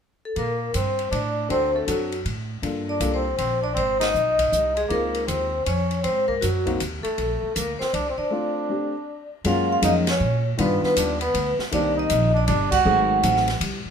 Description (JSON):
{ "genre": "jazz, small-group swing and bop", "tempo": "158 BPM", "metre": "3/4", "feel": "swing 64% on 8ths", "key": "Bb major", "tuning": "A4 = 440 Hz", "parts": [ { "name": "vibraphone with medium hard mallets", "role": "melody", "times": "0.3-13.4 s", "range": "F#4 to Gb5", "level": "-24 LUFS", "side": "left 1 dB", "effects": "none" }, { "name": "dark trumpet", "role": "second line", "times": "0.4-13.4 s", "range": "Gb3 to Gb4", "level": "-29 LUFS", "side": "right 4 dB", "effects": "none" }, { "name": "upright bass", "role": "bass", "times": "0.4-13.9 s", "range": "G1 to Bb2", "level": "-26 LUFS", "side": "right 1 dB", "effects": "none" }, { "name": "open jazz drum kit", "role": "drums", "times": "0.4-13.7 s", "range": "crash cymbal, hi-hat, kick drum, ride cymbal, snare drum", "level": "-31 LUFS", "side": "left 1 dB", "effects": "none" }, { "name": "dark grand piano", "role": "accompaniment", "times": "1.5-13.5 s", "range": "Eb3 to A4", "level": "-26 LUFS", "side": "left 2 dB", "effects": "none" } ], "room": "light reverb", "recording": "minimal, uncompressed stereo recording", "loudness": "-20 LUFS", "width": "side -7 dB against mid", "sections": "0.4-9.5 A section; 9.5-13.9 B section", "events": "band accent 4.0, 10.0, 12.7", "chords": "0.4 Bbmaj7; 1.5 D7; 2.6 Gm9; 3.8 Ab; 4.9 Dbmaj7; 6.0 Ab7; 7.2 Bbmaj7; 9.5 Gbmaj9; 10.6 G7b13; 11.7 Cm7; 12.9 Ab7b9" }